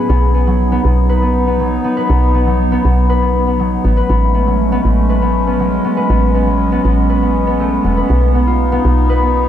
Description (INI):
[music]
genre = IDM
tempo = 120 BPM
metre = 4/4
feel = straight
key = unclear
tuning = A4 = 440 Hz
[part]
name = warbly tape-like pad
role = sustained chords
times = 0.0-9.5 s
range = G#3 to D#4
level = -18 LUFS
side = right 2 dB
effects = chorus, built-in reverb
[part]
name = concert harp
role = arpeggios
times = 0.0-9.5 s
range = F#3 to B4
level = -16 LUFS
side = left 3 dB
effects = digital delay
[part]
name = woody FM bass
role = bass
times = 0.1-9.5 s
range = E1 to B1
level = -14 LUFS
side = equal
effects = none
[sound]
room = light reverb, digital ambience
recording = none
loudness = -11 LUFS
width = side -10 dB against mid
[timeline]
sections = 0.1-9.5 A section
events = none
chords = 0.1 B; 3.8 Amaj9; 8.1 B